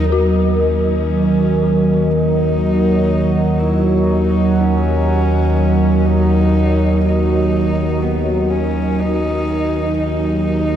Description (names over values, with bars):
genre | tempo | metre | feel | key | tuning
dark ambient drone | 61 BPM | 4/4 | straight | Eb minor | A4 = 443 Hz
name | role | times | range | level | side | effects
dark horsehead fiddle | melody | 0.0-10.8 s | Cb4 to Fb4 | -24 LUFS | left 1 dB | ping-pong delay
sweeping resonant pad | sustained chords | 0.0-10.8 s | Gb3 to Eb5 | -19 LUFS | right 3 dB | chorus
dark detuned synth bell | arpeggios | 0.0-10.8 s | Gb4 to Bb4 | -27 LUFS | left 7 dB | chorus, ping-pong delay
analog drone | drone | 0.0-10.8 s | Eb2 to Gb3 | -15 LUFS | equal | chorus
bronze singing bowl | texture | 0.0-10.8 s | Eb4 to Bb4 | -25 LUFS | left 1 dB | stereo widening
room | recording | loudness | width
wet huge ambient reverb, RT60 7.1 s | cassette tape | -13 LUFS | side -10 dB against mid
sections
0.1-10.8 A section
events
fade-in on horsehead fiddle 0.1-10.8; fade-out on singing bowl 0.1-10.8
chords
0.1 Ebm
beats
| 0.09 1.10 2.10 3.10 | 4.08 5.07 6.05 7.03 | 8.01 9.00 9.98